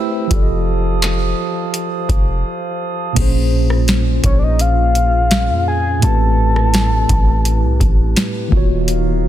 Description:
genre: contemporary R&B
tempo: 84 BPM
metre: 4/4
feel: straight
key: unclear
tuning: A4 = 440 Hz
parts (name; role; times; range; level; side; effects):
- mellow tine electric piano; accompaniment; 0.0-9.3 s; A2 to E5; -21 LUFS; right 1 dB; medium stereo tremolo
- glass harmonica; sustained chords; 0.0-9.3 s; A3 to E6; -26 LUFS; right 1 dB; sidechain pumping
- warm 808-style bass; bass; 0.3-9.3 s; Eb1 to F2; -16 LUFS; equal; none
- booming analog drum machine; drums; 0.3-9.0 s; crash cymbal, handclaps, hi-hat, kick drum, rim click, snare drum; -17 LUFS; equal; overdrive
- soft octave-layered synth lead; melody; 4.3-8.1 s; Db5 to A5; -19 LUFS; left 2 dB; chorus, ping-pong delay
room: digital ambience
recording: dense, heavily limited modern master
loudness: -13 LUFS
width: side -12 dB against mid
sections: 0.0-3.2 A section; 3.2-9.3 B section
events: break 2.5-3.2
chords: 0.3 F7; 3.2 Bbm7; 6.0 Am7; 8.5 Ebm7

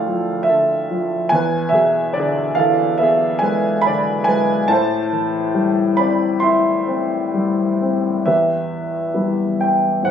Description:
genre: classical, lyrical solo piano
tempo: 63-73 BPM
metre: 4/4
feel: rubato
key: A minor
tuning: A4 = 440 Hz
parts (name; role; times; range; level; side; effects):
- warm baby grand piano; solo; 0.0-10.1 s; D2 to C6; -15 LUFS; equal; none
room: moderate studio reverb, RT60 0.5 s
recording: recorded on a phone in the room, studio reverb, compression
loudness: -15 LUFS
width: side -8 dB against mid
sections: 0.0-8.3 A section; 8.3-10.1 B section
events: none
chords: 0.0 Dm; 1.3 E7; 4.7 Am7; 8.3 Em

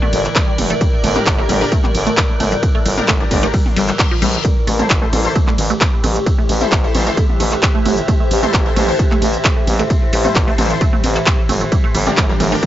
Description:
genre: driving peak-time techno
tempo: 132 BPM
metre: 4/4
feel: straight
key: A phrygian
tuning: A4 = 441 Hz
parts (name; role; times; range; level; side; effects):
- resonant blip pluck; riff; 0.0-12.7 s; F3 to A4; -23 LUFS; right 2 dB; chorus, phaser, sidechain pumping, tape echo
- overtone-sweeping drone; drone; 0.0-12.7 s; A2 to E3; -27 LUFS; right 1 dB; chorus, built-in reverb, phaser, sidechain pumping
- techno drum kit; drums; 0.0-12.7 s; handclaps, hi-hat, ride cymbal, toms; -20 LUFS; equal; sidechain pumping on toms, sidechain pumping on hats, sidechain pumping on cymbals
- granular cloud pad; texture; 0.0-12.7 s; G4 to E5; -23 LUFS; equal; built-in reverb, sidechain pumping
- growling FM bass; bass; 0.1-12.6 s; F1 to Bb1; -20 LUFS; equal; sidechain pumping
- electronic kick drum; drums; 0.4-12.7 s; none; -16 LUFS; equal; none
- rave stab; stabs; 1.2-12.6 s; D4 to C5; -23 LUFS; left 3 dB; chorus, built-in reverb, phaser, sidechain pumping, tape echo
- reverse cymbal; sound effects; 3.7-4.4 s; none; -25 LUFS; left 5 dB; none
room: little or no reverb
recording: dry, gritty hardware recording, nothing above 7.6 kHz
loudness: -13 LUFS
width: side -13 dB against mid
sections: 0.0-12.7 A section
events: reverse cymbal 3.7-4.4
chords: 0.0 Gm; 4.4 Am; 11.7 Gm

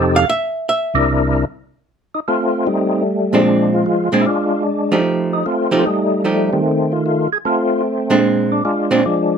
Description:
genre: jazz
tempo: 151 BPM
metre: 4/4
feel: swing 67% on 8ths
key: unclear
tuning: A4 = 440 Hz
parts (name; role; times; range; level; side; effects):
- percussive tonewheel organ; melody; 0.0-9.4 s; C2 to Bb4; -16 LUFS; left 1 dB; slow rotary speaker, overdrive, chorus vibrato
- archtop guitar, miked and amplified; accompaniment; 0.0-9.0 s; Bb2 to F5; -15 LUFS; right 2 dB; none
room: light reverb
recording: close, detailed microphones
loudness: -14 LUFS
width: side -7 dB against mid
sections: 0.0-1.9 A section; 1.9-9.4 B section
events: hollow-body jazz guitar solo 0.0-1.9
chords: 0.3 C9; 1.9 F9; 3.5 Bb9

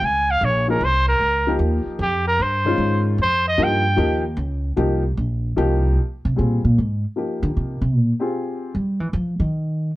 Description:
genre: jazz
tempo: 151 BPM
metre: 3/4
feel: swing 67% on 8ths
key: Db lydian, Ab lydian from 6.0 s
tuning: A4 = 441 Hz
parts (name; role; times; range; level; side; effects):
- clear trumpet; melody; 0.0-4.3 s; G4 to Ab5; -19 LUFS; right 1 dB; none
- upright bass; bass; 0.0-9.9 s; Bb1 to G3; -20 LUFS; equal; none
- warm baby grand piano; accompaniment; 0.7-8.7 s; Eb3 to Ab4; -23 LUFS; left 2 dB; none
room: light reverb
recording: worn, warbling old tape, cassette tape, warbly pitch drift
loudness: -18 LUFS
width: side -17 dB against mid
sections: 0.0-6.0 A section; 6.0-10.0 A section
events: trumpet solo 0.0-6.0; upright bass solo 6.0-10.0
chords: 0.0 Db69; 6.0 Ab69

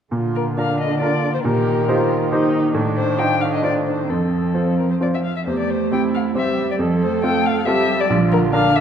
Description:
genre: quick classical-period movement for piano quartet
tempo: 136 BPM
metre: 3/4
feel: rubato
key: Bb major, F major from 5.5 s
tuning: A4 = 440 Hz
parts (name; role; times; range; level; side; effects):
- muted cello; second line; 0.1-8.8 s; D3 to A3; -22 LUFS; right 4 dB; none
- bright baby grand piano; accompaniment; 0.1-8.8 s; Bb1 to C5; -21 LUFS; equal; none
- muted viola; accompaniment; 0.1-8.8 s; C4 to A4; -24 LUFS; right 2 dB; none
- muted violin; melody; 0.4-8.8 s; A4 to G5; -22 LUFS; left 6 dB; none
room: wet recital hall reverb, RT60 1.3 s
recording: dark, warm production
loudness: -16 LUFS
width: side -8 dB against mid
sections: 0.1-8.8 A section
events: none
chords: 0.1 Bb; 1.5 Cm7/Bb; 2.8 F7/A; 4.1 F; 5.5 C/E; 6.8 F; 8.1 Bb

